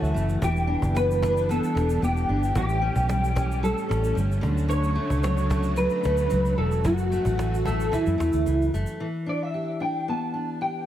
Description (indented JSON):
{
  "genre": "indie pop, bedroom pop",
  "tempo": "112 BPM",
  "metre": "4/4",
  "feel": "straight",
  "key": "E dorian",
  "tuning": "A4 = 438 Hz",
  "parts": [
    { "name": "fingerpicked steel-string acoustic guitar", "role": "accompaniment", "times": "0.0-10.9 s", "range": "F#2 to G4", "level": "-29 LUFS", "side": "left 1 dB", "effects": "lush chorus, warbly pitch drift" },
    { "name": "string machine, violas", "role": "sustained chords", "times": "0.0-9.0 s", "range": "E3 to G4", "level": "-34 LUFS", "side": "equal", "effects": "ensemble chorus" },
    { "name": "vintage muted fingered electric bass", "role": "bass", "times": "0.0-8.8 s", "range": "E1 to F#2", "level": "-25 LUFS", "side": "equal", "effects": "none" },
    { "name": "cajon", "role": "drums", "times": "0.0-8.9 s", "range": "none", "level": "-33 LUFS", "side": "equal", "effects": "none" },
    { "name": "tube shaker", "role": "percussion", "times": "0.0-9.0 s", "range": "none", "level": "-49 LUFS", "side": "right 5 dB", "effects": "none" },
    { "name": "electric guitar through a small old amp", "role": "melody", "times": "0.4-10.9 s", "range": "E4 to A5", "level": "-27 LUFS", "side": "equal", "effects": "ensemble chorus, digital delay" }
  ],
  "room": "small room ambience",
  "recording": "none",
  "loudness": "-22 LUFS",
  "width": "side -11 dB against mid",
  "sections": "0.0-9.0 A section; 9.0-10.9 B section",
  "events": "none",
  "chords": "0.4 Em7; 2.6 A7; 4.4 Dmaj7; 6.9 F#m7; 9.0 Em7"
}